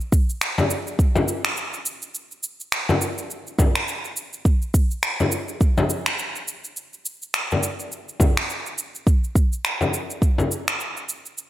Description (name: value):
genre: downtempo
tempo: 104 BPM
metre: 4/4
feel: swing 58% on 16ths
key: none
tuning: none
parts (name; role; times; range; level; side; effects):
- electronic shaker and finger snaps; drums; 0.0-11.5 s; none; -25 LUFS; right 1 dB; gated reverb
- electronic kick drum; drums; 0.1-10.4 s; none; -18 LUFS; equal; none
- frame drum; percussion; 0.6-10.5 s; none; -24 LUFS; left 2 dB; none
room: moderate plate reverb, RT60 1.7 s, digital ambience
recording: bright 1980s-style digital production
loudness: -20 LUFS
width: side -14 dB against mid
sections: 0.0-11.5 A section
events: none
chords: none